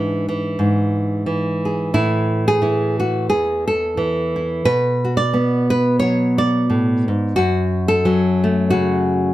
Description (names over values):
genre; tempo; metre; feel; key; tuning
folk, solo fingerstyle acoustic guitar; 88 BPM; 4/4; swing 56% on 8ths; A major; A4 = 440 Hz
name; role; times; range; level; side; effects
nylon-string guitar; solo; 0.0-9.3 s; E2 to D5; -16 LUFS; equal; none
room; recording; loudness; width
moderate studio reverb, RT60 0.6 s; dark, warm production; -16 LUFS; side -15 dB against mid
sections
0.0-9.3 A section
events
none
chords
0.0 E/G#; 1.9 A5; 4.7 Bm; 7.4 F#m